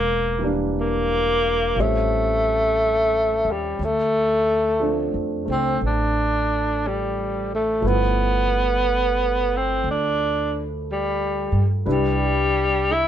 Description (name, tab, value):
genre	jazz ballad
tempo	59 BPM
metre	4/4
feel	swing 66% on 8ths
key	unclear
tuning	A4 = 440 Hz
part	breathy tenor saxophone	melody	0.0-13.1 s	G3 to E4	-20 LUFS	equal	none
part	upright bass	bass	0.0-13.1 s	E1 to G2	-26 LUFS	equal	none
part	clear upright piano	accompaniment	0.4-13.1 s	E3 to B4	-27 LUFS	right 2 dB	none
room	light reverb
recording	band playing live in one room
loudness	-19 LUFS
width	side -10 dB against mid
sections	0.0-13.1 A section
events	none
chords	0.0 Em7b5; 1.8 A7alt; 3.8 Dm7; 7.8 G13; 11.9 Cmaj9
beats	0.74 1.75 2.76 | 3.78 4.79 5.80 6.82 | 7.83 8.83 9.84 10.85 | 11.85 12.86